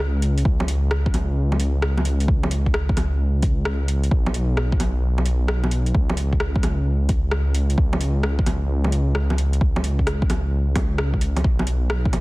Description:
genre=future garage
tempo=131 BPM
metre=4/4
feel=swing 66% on 16ths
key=unclear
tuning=A4 = 440 Hz
part: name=dark detuned saw bass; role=bass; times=0.0-12.2 s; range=B1 to C#2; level=-20 LUFS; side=equal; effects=tube saturation, sidechain pumping
part: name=deep house drum kit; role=drums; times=0.2-12.2 s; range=bongos, hi-hat, rim click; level=-27 LUFS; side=equal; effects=overdrive
part: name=electronic kick drum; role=drums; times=0.5-12.1 s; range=none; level=-21 LUFS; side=equal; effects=overdrive
room=digital ambience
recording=dense, heavily limited modern master, vinyl crackle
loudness=-18 LUFS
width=side -21 dB against mid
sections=0.0-12.2 A section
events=none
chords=none

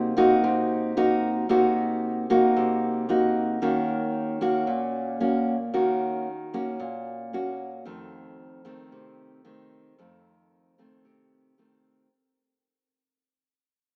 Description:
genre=bossa nova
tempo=113 BPM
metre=4/4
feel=straight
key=unclear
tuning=A4 = 440 Hz
part: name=nylon-string guitar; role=solo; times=0.0-12.1 s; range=F2 to Gb4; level=-25 LUFS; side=equal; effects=none
room=moderate lush hall reverb, RT60 3.1 s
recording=rough home demo mix, small speaker sound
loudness=-25 LUFS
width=mono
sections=0.0-12.1 A section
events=fade-out 0.0-12.1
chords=0.0 Cm7b5; 3.6 Ebm7; 7.9 F7

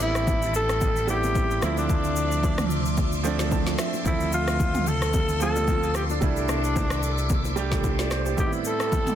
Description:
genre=amapiano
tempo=111 BPM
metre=4/4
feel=swing 55% on 16ths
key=unclear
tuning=A4 = 442 Hz
part: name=growling alto saxophone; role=melody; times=0.0-9.2 s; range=D4 to A4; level=-27 LUFS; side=left 1 dB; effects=digital delay
part: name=clear grand piano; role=accompaniment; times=0.0-9.2 s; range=A2 to A5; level=-30 LUFS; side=right 7 dB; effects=none
part: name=phased string machine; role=sustained chords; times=0.0-9.2 s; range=F3 to E6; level=-33 LUFS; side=equal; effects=ensemble chorus, phaser, sidechain pumping
part: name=fingered electric bass with an envelope filter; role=bass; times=0.0-8.3 s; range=A1 to D2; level=-28 LUFS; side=equal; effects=none
part: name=deep house drum kit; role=drums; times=0.0-9.2 s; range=kick drum, rim click, shaker, snare drum, toms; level=-27 LUFS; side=equal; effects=soft clipping on snare
part: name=bongos and congas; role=percussion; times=0.3-9.1 s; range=none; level=-35 LUFS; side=left 2 dB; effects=none
room=little or no reverb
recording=dense, heavily limited modern master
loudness=-22 LUFS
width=side -10 dB against mid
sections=0.0-9.2 A section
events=grand piano fill 3.2-4.1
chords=0.0 Am9; 1.6 Dm9; 6.2 C69; 8.4 Am9

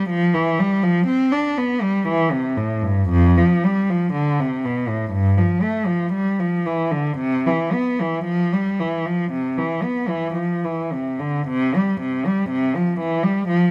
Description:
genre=classical, baroque-style suite movement for unaccompanied cello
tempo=53-62 BPM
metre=4/4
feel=rubato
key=C major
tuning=A4 = 440 Hz
part: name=rich cello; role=solo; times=0.0-13.7 s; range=F2 to D4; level=-20 LUFS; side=equal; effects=none
room=light reverb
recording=none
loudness=-20 LUFS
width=mono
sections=0.0-11.5 A section; 11.5-13.7 B section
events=none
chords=none

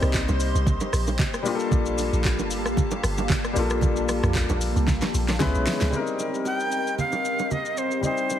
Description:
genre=amapiano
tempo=114 BPM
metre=4/4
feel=swing 55% on 16ths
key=C dorian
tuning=A4 = 445 Hz
part: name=warm grand piano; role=accompaniment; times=0.0-8.4 s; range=G3 to C5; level=-28 LUFS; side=left 4 dB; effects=none
part: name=hollow soft pad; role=sustained chords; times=0.0-8.4 s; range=Bb3 to C6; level=-31 LUFS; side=right 1 dB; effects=ensemble chorus
part: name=deep log drum bass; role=bass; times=0.0-5.9 s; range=G1 to Db2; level=-25 LUFS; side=equal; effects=none
part: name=smooth R&B drum kit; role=drums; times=0.0-8.4 s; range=handclaps, hi-hat, kick drum, rim click, shaker, snare drum, toms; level=-27 LUFS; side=equal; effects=none
part: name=bongos and congas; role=percussion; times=0.1-8.4 s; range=none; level=-30 LUFS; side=right 4 dB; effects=none
part: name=breathy bright jazz flute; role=melody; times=6.5-8.4 s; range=C5 to G5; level=-26 LUFS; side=right 1 dB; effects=ping-pong delay
room=light reverb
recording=heavily compressed radio sound, multiband compression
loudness=-22 LUFS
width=side -10 dB against mid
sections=0.0-5.9 A section; 5.9-8.4 B section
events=drop 0.0-5.9; drum fill 4.9-5.9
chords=0.0 Cm7; 1.5 Gm9; 5.4 Dbm7; 5.9 Cm7

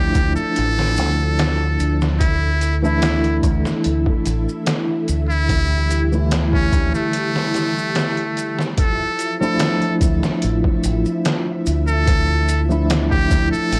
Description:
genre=trip hop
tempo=73 BPM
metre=4/4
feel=straight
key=D minor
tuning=A4 = 440 Hz
part: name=trumpet with metal mute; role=melody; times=0.0-13.8 s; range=A3 to A4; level=-26 LUFS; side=equal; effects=tape echo
part: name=tine electric piano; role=accompaniment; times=0.0-13.8 s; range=D3 to E4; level=-25 LUFS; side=equal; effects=tremolo
part: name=string machine, cellos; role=sustained chords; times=0.0-13.8 s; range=F3 to E5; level=-30 LUFS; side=equal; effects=ensemble chorus, vintage 12-bit sampler grit
part: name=deep dub fingered electric bass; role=bass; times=0.0-13.8 s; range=A1 to D2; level=-22 LUFS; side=equal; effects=none
part: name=trip hop sampler-style drum kit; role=drums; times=0.1-13.8 s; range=hi-hat, kick drum, snare drum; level=-23 LUFS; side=equal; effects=overdrive
part: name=maracas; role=percussion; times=0.1-13.8 s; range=none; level=-39 LUFS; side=equal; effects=none
room=digital ambience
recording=worn, warbling old tape, cassette tape, warbly pitch drift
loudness=-19 LUFS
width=mono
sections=0.0-8.8 A section; 8.8-13.8 B section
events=break 7.1-8.8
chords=0.0 Dmadd9; 2.2 Asus4; 8.8 Dmadd9

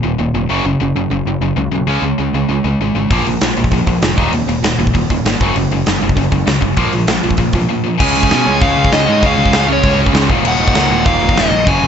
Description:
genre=punk rock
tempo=196 BPM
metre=4/4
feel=straight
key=Eb minor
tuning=A4 = 440 Hz
part: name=distorted electric guitar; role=riff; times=0.0-11.9 s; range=Eb2 to Db4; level=-19 LUFS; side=right 11 dB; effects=overdrive
part: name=tight distorted guitar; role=riff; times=0.0-11.9 s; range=Eb2 to Db4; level=-18 LUFS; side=left 12 dB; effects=distortion
part: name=growling picked electric bass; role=bass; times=0.0-11.9 s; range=Eb1 to Cb3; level=-19 LUFS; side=equal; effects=overdrive
part: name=big rock drum kit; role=drums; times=3.1-11.7 s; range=crash cymbal, hi-hat, kick drum, snare drum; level=-16 LUFS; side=equal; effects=none
part: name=dark smooth lead guitar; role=melody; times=8.0-11.9 s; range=Db5 to Ab5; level=-16 LUFS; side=equal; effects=overdrive
part: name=biting overdriven guitar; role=riff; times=8.0-11.9 s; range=Eb2 to Db4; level=-20 LUFS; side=right 1 dB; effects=none
room=light reverb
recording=nothing above 7.9 kHz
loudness=-12 LUFS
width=side -8 dB against mid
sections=0.0-8.0 A section; 8.0-11.9 B section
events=none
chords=0.0 Eb5; 0.5 Gb5; 1.9 Db5; 3.1 Bb5; 4.2 Eb5; 5.4 Gb5; 6.8 Bb5; 8.0 Db; 10.3 Ebm

